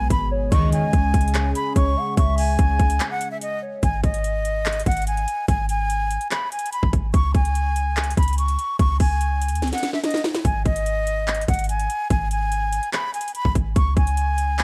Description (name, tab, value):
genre	hip hop, trap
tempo	145 BPM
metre	4/4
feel	half-time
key	G# minor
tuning	A4 = 439 Hz
part	breathy bright concert flute	melody	0.0-14.6 s	D#5 to C#6	-27 LUFS	equal	none
part	warm analog pad	sustained chords	0.0-3.8 s	B2 to G#4	-31 LUFS	equal	chorus
part	clean 808-style bass	bass	0.0-14.6 s	G#1 to D#2	-24 LUFS	equal	none
part	trap drum kit	drums	0.1-14.6 s	handclaps, hi-hat, kick drum, snare drum	-25 LUFS	equal	overdrive
part	gliding portamento lead	second line	0.3-3.8 s	C#5 to F#5	-33 LUFS	equal	chorus, delay
part	big bright polysynth	stabs	0.5-0.8 s	G#1 to D#3	-24 LUFS	equal	chorus
room	little or no reverb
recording	vinyl crackle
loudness	-22 LUFS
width	mono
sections	0.0-3.8 A section; 3.8-14.6 B section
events	break 3.0-3.8; drum fill 9.6-10.4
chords	0.0 G#m; 0.5 C#5; 3.8 G#5; 7.1 C#5; 10.4 G#5; 13.8 C#5